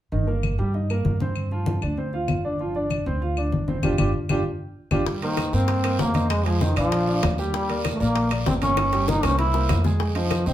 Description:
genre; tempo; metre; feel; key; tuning
Afro-Cuban jazz; 194 BPM; 4/4; straight; C minor; A4 = 439 Hz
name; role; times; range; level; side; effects
warm grand piano; accompaniment; 0.1-10.5 s; Eb3 to Ab5; -27 LUFS; right 2 dB; none
upright bass; bass; 0.1-10.5 s; G1 to G2; -25 LUFS; equal; none
congas; percussion; 0.1-10.5 s; none; -29 LUFS; left 2 dB; none
claves; percussion; 0.4-10.5 s; none; -36 LUFS; left 7 dB; none
bongos; percussion; 5.1-10.5 s; none; -33 LUFS; left 6 dB; none
guiro; percussion; 5.1-10.5 s; none; -39 LUFS; right 5 dB; none
trombone with metal mute; melody; 5.2-10.5 s; Eb3 to E4; -24 LUFS; equal; none
timbales; percussion; 5.2-10.5 s; none; -34 LUFS; right 5 dB; none
room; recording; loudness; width
wet club reverb, RT60 0.7 s; heard from further back in the room; -21 LUFS; side -12 dB against mid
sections
0.1-5.1 A section; 5.1-10.5 B section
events
band accent 3.8-5.1; drum fill 8.8-10.0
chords
0.1 Cm7/G; 1.4 G7sus4; 4.5 G5; 5.1 Cm7; 6.3 Fm7; 6.9 Bb; 7.5 Ebmaj7; 8.8 Gdim; 9.4 C7; 10.0 Fm7

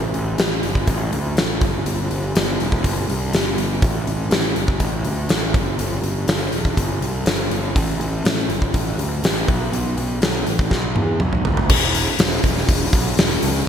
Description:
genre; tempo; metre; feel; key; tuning
hard rock; 122 BPM; 4/4; straight; E minor; A4 = 435 Hz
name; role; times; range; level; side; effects
fuzz picked electric bass; bass; 0.0-13.6 s; E1 to E2; -22 LUFS; equal; overdrive
huge arena drum kit; drums; 0.1-13.5 s; crash cymbal, hi-hat, kick drum, snare drum, toms; -19 LUFS; equal; gated reverb
room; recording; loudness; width
light reverb; bright 1980s-style digital production; -17 LUFS; side -8 dB against mid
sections
0.0-11.7 A section; 11.7-13.7 B section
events
drum fill 10.7-11.7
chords
none

